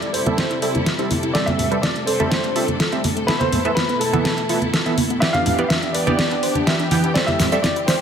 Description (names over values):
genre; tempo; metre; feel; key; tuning
progressive house; 124 BPM; 4/4; straight; A minor; A4 = 440 Hz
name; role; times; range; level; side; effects
warm baby grand piano; melody; 0.0-8.0 s; A4 to F5; -26 LUFS; equal; vintage 12-bit sampler grit, low-pass filter, digital delay
soft supersaw; second line; 0.0-8.0 s; A4 to F5; -30 LUFS; right 1 dB; none
rich symphonic string section; sustained chords; 0.0-8.0 s; B2 to A4; -26 LUFS; left 2 dB; sidechain pumping
glassy wavetable pluck; arpeggios; 0.0-8.0 s; A3 to E5; -26 LUFS; equal; chorus, sidechain pumping, digital delay
pop drum kit; drums; 0.0-8.0 s; cabasa, hi-hat, snare drum; -22 LUFS; equal; overdrive
supersaw stab; stabs; 0.3-7.6 s; E3 to G5; -24 LUFS; right 3 dB; sidechain pumping, low-pass filter, digital delay
congas; percussion; 0.3-7.7 s; none; -26 LUFS; right 2 dB; sidechain pumping on perc
electronic kick drum; drums; 0.4-7.7 s; none; -30 LUFS; equal; none
riser; sound effects; 7.8-8.0 s; none; -43 LUFS; left 2 dB; none
room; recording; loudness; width
moderate lush hall reverb, RT60 2.0 s, digital ambience; none; -17 LUFS; side -7 dB against mid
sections
0.0-8.0 A section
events
build-up 0.0-8.0; drum fill 0.0-8.0; filter sweep on synth arpeggio sound 0.0-8.0; filter sweep on supersaw synth 0.0-8.0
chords
0.0 Am7; 3.3 Esus4; 5.2 G6; 7.2 Am7